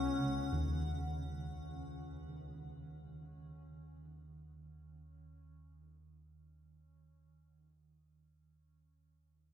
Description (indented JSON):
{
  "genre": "dark ambient drone",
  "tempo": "free time",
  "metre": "none",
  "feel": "none",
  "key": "unclear",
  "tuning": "A4 = 438 Hz",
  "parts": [
    { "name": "dark duduk", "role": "melody", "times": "0.0-1.0 s", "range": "C#4", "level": "-42 LUFS", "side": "left 3 dB", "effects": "shimmer reverb, tape echo" },
    { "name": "swarming drone", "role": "drone", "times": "0.0-1.7 s", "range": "C#2 to C#3", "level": "-44 LUFS", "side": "equal", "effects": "built-in reverb" },
    { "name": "icy glass pad", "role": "texture", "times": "0.0-1.6 s", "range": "F#5", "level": "-48 LUFS", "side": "right 1 dB", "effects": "chorus, built-in reverb, shimmer reverb" },
    { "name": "gamelan-type bossed gongs", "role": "arpeggios", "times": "0.5-7.6 s", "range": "D#2", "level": "-44 LUFS", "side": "equal", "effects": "tape echo" }
  ],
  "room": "wet cathedral reverb, RT60 4.9 s",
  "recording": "none",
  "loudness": "-40 LUFS",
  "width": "side -9 dB against mid",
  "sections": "0.0-1.6 A section",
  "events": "fade-out 0.0-1.6",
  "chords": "0.0 C#sus2",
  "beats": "free time"
}